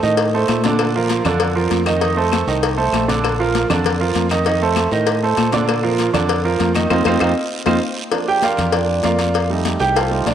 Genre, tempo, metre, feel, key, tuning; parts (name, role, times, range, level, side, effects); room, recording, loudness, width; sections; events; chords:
latin, salsa; 196 BPM; 4/4; straight; Bb major; A4 = 439 Hz
clear baby grand piano; accompaniment; 0.0-10.3 s; D3 to G5; -18 LUFS; right 4 dB; cassette tape
fingered electric bass; bass; 0.0-10.3 s; Bb1 to Bb2; -21 LUFS; left 1 dB
congas; percussion; 0.0-10.3 s; -26 LUFS; left 9 dB
guiro; percussion; 0.0-10.3 s; -31 LUFS; right 6 dB
cowbell; percussion; 0.2-10.3 s; -23 LUFS; left 8 dB
claves; percussion; 0.5-7.7 s; -30 LUFS; left 8 dB
wet lush hall reverb, RT60 2.2 s; home recording on cassette; -15 LUFS; side -9 dB against mid
0.0-8.1 A section; 8.1-10.3 B section
drum fill 6.9-8.1; band accent 6.9-8.1; grand piano solo 8.1-10.3
0.0 F7 (rootless); 0.8 Bb; 2.0 F7; 3.2 Bb; 4.5 F7; 5.7 Bb; 6.9 F5; 8.1 Bb; 9.3 F7